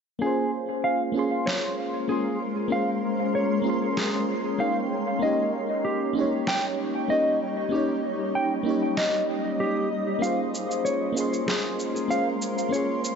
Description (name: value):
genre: sunset chillout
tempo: 96 BPM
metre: 4/4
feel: straight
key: Bb dorian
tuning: A4 = 440 Hz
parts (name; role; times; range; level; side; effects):
- mellow FM electric piano; accompaniment; 0.2-13.2 s; Bb3 to C6; -27 LUFS; equal; chorus, auto-pan, low-pass filter, analog delay
- shimmering ambient pad; sustained chords; 1.8-13.2 s; G3 to C6; -30 LUFS; left 1 dB; chorus, built-in reverb
- mellow electric guitar; arpeggios; 0.2-13.0 s; G4 to G5; -28 LUFS; right 1 dB; low-pass filter, analog delay
- electronic snare drum and cabasa; drums; 1.5-13.2 s; none; -32 LUFS; equal; small room ambience, dub echo
room: moderate plate reverb, RT60 3.3 s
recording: echo-heavy mix, nothing above 7.8 kHz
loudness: -23 LUFS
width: side -6 dB against mid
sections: 0.2-13.2 A section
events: none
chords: 0.2 Bbm9; 4.9 Eb7; 10.2 Bbm9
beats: | 0.22 0.85 1.47 2.10 | 2.72 3.35 3.97 4.60 | 5.22 5.85 6.47 7.10 | 7.72 8.35 8.97 9.60 | 10.22 10.85 11.47 12.10 | 12.72